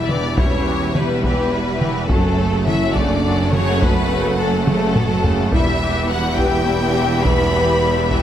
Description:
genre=cinematic, epic orchestral film score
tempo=70 BPM (dotted quarters)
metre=6/8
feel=straight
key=E dorian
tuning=A4 = 438 Hz
part: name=clear symphonic violin section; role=melody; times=0.0-8.2 s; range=A4 to B5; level=-23 LUFS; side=left 4 dB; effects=none
part: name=rich studio violin section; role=second line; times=0.0-8.2 s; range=A3 to G4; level=-27 LUFS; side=left 3 dB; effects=none
part: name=clear symphonic viola section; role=accompaniment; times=0.0-8.2 s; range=C#3 to A3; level=-27 LUFS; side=right 2 dB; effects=none
part: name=clear studio string section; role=sustained chords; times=0.0-8.2 s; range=G3 to F#5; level=-26 LUFS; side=left 1 dB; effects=none
part: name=mellow French horn section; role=sustained chords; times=0.0-8.2 s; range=A3 to B4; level=-24 LUFS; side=left 3 dB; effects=none
part: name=clear studio double bass section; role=bass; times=0.0-8.2 s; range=E1 to F#1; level=-24 LUFS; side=right 3 dB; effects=none
part: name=rich symphonic cello section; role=bass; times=0.0-8.2 s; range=E2 to F#2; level=-22 LUFS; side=right 3 dB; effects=none
part: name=solo taiko drums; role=drums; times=0.1-8.2 s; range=none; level=-21 LUFS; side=equal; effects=none
room=light reverb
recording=close, detailed microphones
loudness=-15 LUFS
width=side -10 dB against mid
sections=0.0-8.2 A section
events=drum fill 4.7-5.5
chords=0.0 Em; 2.1 F#m; 5.5 Em

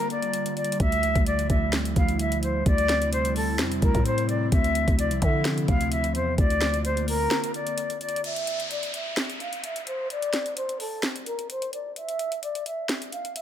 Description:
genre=hip hop, trap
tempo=129 BPM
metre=4/4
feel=half-time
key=unclear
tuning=A4 = 440 Hz
part: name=concert flute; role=melody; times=0.0-13.4 s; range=A4 to F5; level=-28 LUFS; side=left 1 dB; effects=low-pass filter, ping-pong delay
part: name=airy breathy pad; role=sustained chords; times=0.0-8.2 s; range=C3 to F4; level=-31 LUFS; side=right 1 dB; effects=chorus
part: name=trap drum kit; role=drums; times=0.1-13.4 s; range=hi-hat, kick drum, snare drum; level=-27 LUFS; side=equal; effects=none
part: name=growling 808-style bass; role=bass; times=0.8-7.3 s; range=C2 to D3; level=-26 LUFS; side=equal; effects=none
part: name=downlifter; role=sound effects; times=8.2-12.0 s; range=none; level=-35 LUFS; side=equal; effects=none
room=light reverb, digital ambience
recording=none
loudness=-23 LUFS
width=side -10 dB against mid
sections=0.0-8.2 A section; 8.2-13.4 B section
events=break 0.0-0.8, 7.3-8.2, 8.2-13.4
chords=0.0 Bb/D; 0.8 Dmadd9; 2.7 Am7/D; 4.5 F5; 6.4 Bb/D; 8.2 N.C.

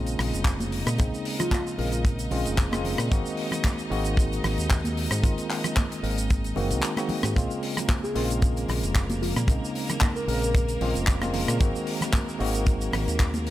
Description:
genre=nu-disco, nu disco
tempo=113 BPM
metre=4/4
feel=straight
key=Bb minor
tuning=A4 = 444 Hz
part: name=bright tine electric piano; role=accompaniment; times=0.0-13.5 s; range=Db3 to Bb4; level=-29 LUFS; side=equal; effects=fast stereo tremolo, digital delay
part: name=bright studio violin section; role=sustained chords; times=0.0-13.5 s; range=Bb3 to Eb5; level=-37 LUFS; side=left 1 dB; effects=sidechain pumping
part: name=fingered electric bass with an envelope filter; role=bass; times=0.0-13.5 s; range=F1 to Bb2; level=-29 LUFS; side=equal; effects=none
part: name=tight funk drum kit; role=drums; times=0.1-13.5 s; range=handclaps, hi-hat, rim click, shaker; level=-31 LUFS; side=left 1 dB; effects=none
part: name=congas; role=percussion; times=0.2-13.4 s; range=none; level=-34 LUFS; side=right 2 dB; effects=none
part: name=kick drum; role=drums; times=0.4-13.3 s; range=none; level=-23 LUFS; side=equal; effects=none
part: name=soft octave-layered synth lead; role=melody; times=1.4-2.0, 8.0-10.9 s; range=F4 to Bb4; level=-34 LUFS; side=equal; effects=chorus, phaser, cassette tape, dub echo
room=studio reverb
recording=none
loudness=-23 LUFS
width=side -14 dB against mid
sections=0.0-13.5 A section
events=kick drops out 6.8-7.4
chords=0.0 Bbm7; 3.1 Ab7; 7.4 Bbm7; 11.6 Ab7

